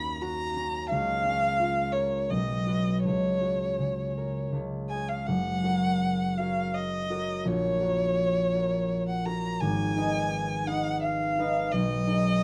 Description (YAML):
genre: classical, romantic duo for violin and harp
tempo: 79-89 BPM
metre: 3/4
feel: rubato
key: F# major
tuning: A4 = 438 Hz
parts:
  - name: warm violin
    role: melody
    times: 0.0-12.4 s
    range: C#5 to B5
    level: -31 LUFS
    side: equal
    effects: none
  - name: concert harp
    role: accompaniment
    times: 0.0-12.4 s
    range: F#1 to D#5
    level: -30 LUFS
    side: equal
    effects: none
room: light reverb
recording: dark, warm production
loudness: -28 LUFS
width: mono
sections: 0.0-5.3 A section; 5.3-12.4 B section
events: none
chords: 0.0 D#m7; 0.9 A#m/C#; 2.3 B; 3.0 F#/C#; 4.5 C#5; 5.3 F#; 7.5 F#/A#; 9.6 G#m; 11.7 G#m/B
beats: 0.21 | 0.89 1.58 2.30 | 3.04 3.80 4.54 | 5.29 6.03 6.75 | 7.47 8.20 8.92 | 9.62 10.32 11.04 | 11.73 12.43